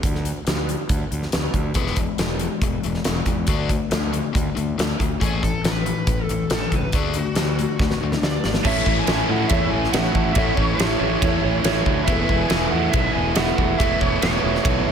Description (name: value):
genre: classic rock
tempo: 139 BPM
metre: 4/4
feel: straight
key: unclear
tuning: A4 = 442 Hz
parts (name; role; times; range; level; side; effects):
- fuzz fingered electric bass; bass; 0.0-14.9 s; E1 to A2; -26 LUFS; right 1 dB; overdrive
- huge arena drum kit; drums; 0.0-14.8 s; crash cymbal, hi-hat, kick drum, ride cymbal, snare drum; -22 LUFS; equal; none
- biting overdriven guitar; riff; 1.8-14.9 s; A2 to E4; -25 LUFS; left 9 dB; none
- overdriven slide guitar; second line; 5.2-8.2 s; F#4 to B4; -29 LUFS; left 2 dB; slapback echo
- lead guitar through a small cranked amp; melody; 8.2-14.9 s; C#5 to G#5; -26 LUFS; right 1 dB; wah, overdrive
- overdriven electric guitar; riff; 8.6-14.9 s; A2 to E4; -24 LUFS; right 15 dB; none
- dark upright piano; accompaniment; 8.7-14.9 s; A4 to F#5; -32 LUFS; equal; none
room: light reverb, small room reverb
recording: none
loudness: -18 LUFS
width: side -7 dB against mid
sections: 0.0-8.7 A section; 8.7-14.9 B section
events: drum fill 7.8-8.7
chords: 0.0 N.C.; 1.8 E; 3.5 D5; 5.2 A5; 6.9 D; 8.7 A; 12.1 Esus4